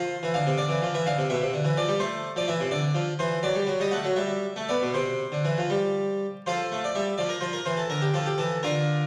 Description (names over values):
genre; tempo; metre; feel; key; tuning
classical, baroque-style suite movement for harpsichord; 78-87 BPM (dotted quarters); 6/8; rubato; C major; A4 = 442 Hz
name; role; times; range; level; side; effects
harpsichord; solo; 0.0-9.1 s; B2 to F#5; -27 LUFS; equal; none
room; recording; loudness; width
wet recital hall reverb, RT60 1.4 s; vinyl crackle; -27 LUFS; mono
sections
0.0-6.5 A section; 6.5-9.1 A section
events
none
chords
0.0 F5; 1.3 G7/B; 2.0 Am; 2.7 Dm; 3.4 Dadd11/F#; 4.2 G; 4.9 C; 6.5 F; 7.2 Bbmaj9#11; 7.9 Bb/D